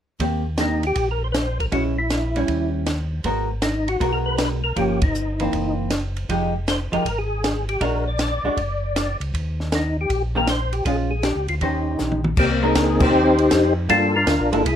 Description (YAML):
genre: soul jazz organ trio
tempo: 158 BPM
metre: 4/4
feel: swing 67% on 8ths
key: Eb major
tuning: A4 = 440 Hz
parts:
  - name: vintage hollow-body jazz guitar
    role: accompaniment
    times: 0.2-14.6 s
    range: Eb3 to C5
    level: -24 LUFS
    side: right 1 dB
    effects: none
  - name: mellow tonewheel organ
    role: bass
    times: 0.2-14.8 s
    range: F1 to G2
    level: -25 LUFS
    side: equal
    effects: overdrive, chorus vibrato, slow rotary speaker
  - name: compact cocktail drum kit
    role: drums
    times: 0.2-14.8 s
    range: crash cymbal, hi-hat, kick drum, ride cymbal, snare drum, toms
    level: -25 LUFS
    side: equal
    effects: none
  - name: percussive tonewheel organ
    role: melody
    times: 0.6-14.8 s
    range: Bb3 to D5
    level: -22 LUFS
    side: left 1 dB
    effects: slow rotary speaker, chorus vibrato
room: light reverb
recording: close, detailed microphones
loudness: -19 LUFS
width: side -9 dB against mid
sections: 0.2-12.4 A section; 12.4-14.8 B section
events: band accent 5.0, 12.9; drum fill 12.0-12.4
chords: 0.2 Eb6; 1.7 Bbm7b5; 2.5 Eb7b9; 3.2 Abm9; 4.8 Gm7b5; 5.5 Gb7#11; 6.3 Fm9; 7.8 Bb7alt; 9.3 Eb6; 10.9 Bbm7; 11.6 Eb6; 12.4 Abmaj9; 13.9 Gm9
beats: | 0.20 0.58 0.96 1.34 | 1.72 2.10 2.48 2.86 | 3.24 3.62 4.00 4.38 | 4.76 5.14 5.53 5.91 | 6.29 6.67 7.05 7.43 | 7.81 8.19 8.57 8.95 | 9.33 9.71 10.09 10.47 | 10.85 11.23 11.61 11.99 | 12.37 12.75 13.13 13.51 | 13.89 14.27 14.65